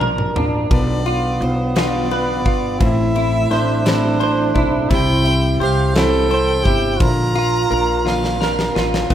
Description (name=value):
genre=six-eight pop ballad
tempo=57 BPM (dotted quarters)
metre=6/8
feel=straight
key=unclear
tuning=A4 = 445 Hz
part: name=direct-recorded clean electric guitar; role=accompaniment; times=0.0-9.1 s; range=A2 to C5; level=-20 LUFS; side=right 1 dB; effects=double-tracked left and right
part: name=fingerpicked plugged-in steel-string acoustic guitar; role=arpeggios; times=0.0-9.1 s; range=A2 to C5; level=-26 LUFS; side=left 4 dB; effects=none
part: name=upright bass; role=bass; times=0.0-9.1 s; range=G1 to C2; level=-21 LUFS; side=equal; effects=none
part: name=huge arena drum kit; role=drums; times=0.0-9.1 s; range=kick drum, ride cymbal, snare drum, splash cymbal, toms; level=-22 LUFS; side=equal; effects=none
part: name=warm violin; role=melody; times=0.7-8.9 s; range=C5 to Bb5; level=-25 LUFS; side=equal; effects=none
part: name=mellow duduk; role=second line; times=0.7-9.1 s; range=B3 to A4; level=-22 LUFS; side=right 3 dB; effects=none
room=small room reverb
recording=rough home demo mix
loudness=-15 LUFS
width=side -10 dB against mid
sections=0.0-9.1 A section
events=drum fill 0.0-0.7, 8.0-9.1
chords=0.0 Bb; 0.7 Bdim; 2.8 Am; 4.9 C; 7.0 Bb